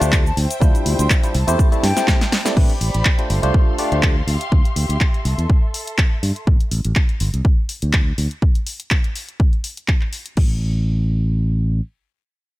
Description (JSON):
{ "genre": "filtered disco house", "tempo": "123 BPM", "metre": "4/4", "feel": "swing 54% on 16ths", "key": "unclear", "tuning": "A4 = 440 Hz", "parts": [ { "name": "barky tine electric piano", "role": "accompaniment", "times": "0.0-4.1 s", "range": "G3 to D5", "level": "-23 LUFS", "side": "equal", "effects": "phaser, sidechain pumping, low-pass filter" }, { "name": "warm studio violin section", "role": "sustained chords", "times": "0.0-6.5 s", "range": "E4 to C6", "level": "-29 LUFS", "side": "equal", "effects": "sidechain pumping, low-pass filter" }, { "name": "modern bright fingered electric bass", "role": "bass", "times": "0.0-11.8 s", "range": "G1 to G2", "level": "-19 LUFS", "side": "equal", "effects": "sidechain pumping, low-pass filter" }, { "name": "punchy analog drum machine", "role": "drums", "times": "0.0-10.5 s", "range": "cabasa, crash cymbal, handclaps, hi-hat, snare drum", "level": "-23 LUFS", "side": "equal", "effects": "overdrive, sidechain pumping on hats, sidechain pumping on perc, sidechain pumping on cymbals" }, { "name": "electronic kick drum", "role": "drums", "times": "0.1-10.5 s", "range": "none", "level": "-16 LUFS", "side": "equal", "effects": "none" }, { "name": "breathy mellow silver concert flute", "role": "melody", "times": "0.3-2.3 s", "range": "G5 to C6", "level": "-28 LUFS", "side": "left 2 dB", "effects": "sidechain pumping, low-pass filter, tape echo" } ], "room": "digital ambience", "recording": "none", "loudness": "-16 LUFS", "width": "side -17 dB against mid", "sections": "0.0-2.6 A section; 2.6-10.4 B section; 10.4-12.6 C section", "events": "drop 0.0-2.6; drum fill 1.8-2.6", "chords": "0.4 Dm11; 1.3 C6; 2.6 Am11; 3.3 G9sus4; 4.3 Dm11; 5.2 C6; 6.5 N.C.", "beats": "0.13 | 0.61 1.10 1.59 2.08 | 2.57 3.05 3.54 4.03 | 4.52 5.00 5.49 5.98 | 6.47 6.96 7.44 7.93 | 8.42 8.91 9.39 9.88 | 10.37 10.86 11.35" }